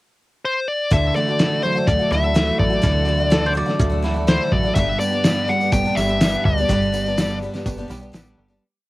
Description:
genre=folk rock and heartland rock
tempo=125 BPM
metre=4/4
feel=straight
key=unclear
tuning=A4 = 440 Hz
part: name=dark smooth lead guitar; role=melody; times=0.5-7.4 s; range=C5 to G5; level=-21 LUFS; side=left 2 dB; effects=overdrive, cassette tape
part: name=picked twelve-string acoustic guitar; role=accompaniment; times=0.9-8.6 s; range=G2 to G4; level=-26 LUFS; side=left 3 dB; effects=cassette tape
part: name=electric guitar at the edge of break-up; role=riff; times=0.9-8.6 s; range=G2 to G4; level=-24 LUFS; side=right 3 dB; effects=spring reverb, cassette tape
part: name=metallic FM bass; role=bass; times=0.9-8.6 s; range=G1 to D2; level=-24 LUFS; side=equal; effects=none
part: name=cloth-damped thuddy drum kit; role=drums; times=0.9-8.3 s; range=hi-hat, kick drum, snare drum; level=-20 LUFS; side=equal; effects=none
part: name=mandolin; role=second line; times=3.3-4.2 s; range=A4 to D5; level=-26 LUFS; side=equal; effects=cassette tape
part: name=tambourine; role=percussion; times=4.8-8.6 s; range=none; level=-40 LUFS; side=right 3 dB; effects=none
room=light reverb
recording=home recording on cassette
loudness=-17 LUFS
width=side -18 dB against mid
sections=0.0-0.9 pickup bar; 0.9-8.6 pre-chorus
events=fade-out 6.7-8.6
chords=0.0 N.C.; 0.9 Dadd9; 4.8 G

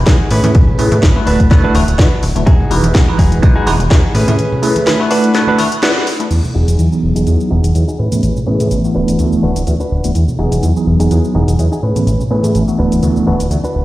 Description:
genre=filtered disco house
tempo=125 BPM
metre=4/4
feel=swing 55% on 16ths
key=E major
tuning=A4 = 440 Hz
part: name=plucky analog bass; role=bass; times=0.0-13.8 s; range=D1 to A2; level=-14 LUFS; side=equal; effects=sidechain pumping, low-pass filter
part: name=bell-like tine electric piano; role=accompaniment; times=0.1-13.6 s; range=E3 to B4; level=-16 LUFS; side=equal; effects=medium stereo tremolo, phaser, sidechain pumping, low-pass filter
part: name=direct-recorded clean electric guitar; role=riff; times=0.1-13.8 s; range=C#4 to B4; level=-21 LUFS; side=equal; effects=sidechain pumping, low-pass filter
part: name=electronic kick drum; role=drums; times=0.1-4.0 s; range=none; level=-10 LUFS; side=equal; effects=overdrive, studio reverb
part: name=house drum kit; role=drums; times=0.1-13.7 s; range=crash cymbal, hi-hat, shaker, snare drum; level=-21 LUFS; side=equal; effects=overdrive, studio reverb
part: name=tambourine and congas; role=percussion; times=0.1-13.8 s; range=none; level=-23 LUFS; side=right 1 dB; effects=none
room=light reverb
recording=played on a big sound system in a bare room, large studio reverb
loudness=-10 LUFS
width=side -16 dB against mid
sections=0.0-6.3 A section; 6.3-13.8 B section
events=filter sweep 0.0-6.3, 6.3-13.8; break 4.4-6.3; band accent 5.8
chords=0.3 Amaj9; 1.3 D6; 2.5 Emaj9; 4.2 Amaj9; 5.1 D6; 6.3 Emaj9; 8.0 Amaj9; 9.0 D6; 10.2 Emaj9; 11.8 Amaj9; 12.8 D6

